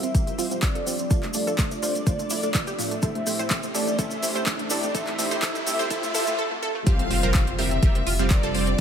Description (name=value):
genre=progressive house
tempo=125 BPM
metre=4/4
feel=straight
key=F major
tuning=A4 = 440 Hz
part: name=wide unison lead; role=melody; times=0.0-8.8 s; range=D5 to F5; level=-30 LUFS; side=left 2 dB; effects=sidechain pumping, tape echo
part: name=evolving wavetable pad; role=sustained chords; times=0.0-8.8 s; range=C3 to D5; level=-35 LUFS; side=right 2 dB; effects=ensemble chorus, built-in reverb, phaser, sidechain pumping
part: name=wide unison pluck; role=arpeggios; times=0.0-8.8 s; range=A3 to C5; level=-31 LUFS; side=right 2 dB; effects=analog chorus, sidechain pumping, tape echo
part: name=deep house drum kit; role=drums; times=0.0-8.8 s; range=handclaps, hi-hat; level=-30 LUFS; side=equal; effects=none
part: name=tube shaker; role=percussion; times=0.0-6.4 s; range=none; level=-33 LUFS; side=equal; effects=none
part: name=riser and impact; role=sound effects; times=1.9-8.8 s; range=none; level=-34 LUFS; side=equal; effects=none
part: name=supersaw stab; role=stabs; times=0.1-8.8 s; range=A2 to F5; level=-30 LUFS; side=right 2 dB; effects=sidechain pumping, low-pass filter, tape echo
part: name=electronic kick drum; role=drums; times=0.1-8.4 s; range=none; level=-22 LUFS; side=equal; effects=none
part: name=clear studio violin section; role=second line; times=6.9-8.8 s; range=D5 to F5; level=-34 LUFS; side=left 3 dB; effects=sidechain pumping, tape echo
part: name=round analog bass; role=bass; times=7.1-8.7 s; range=F1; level=-27 LUFS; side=equal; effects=sidechain pumping
room=light reverb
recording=high-pass filter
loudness=-22 LUFS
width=side -8 dB against mid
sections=0.0-6.9 A section; 6.9-8.8 B section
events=build-up 0.0-6.9; filter sweep on synth pluck 0.0-6.9; filter sweep on supersaw synth 0.0-6.9; filter sweep 0.0-6.9; riser 1.9-6.4; break 6.4-6.9; drop 6.9-8.8; impact 6.9-8.8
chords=0.0 Fsus2; 1.1 Dm; 3.0 Am7; 6.9 Fsus2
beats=0.15 0.63 | 1.11 1.59 2.07 2.55 | 3.03 3.51 3.99 4.47 | 4.95 5.43 5.91 6.39 | 6.87 7.35 7.83 8.31 | 8.79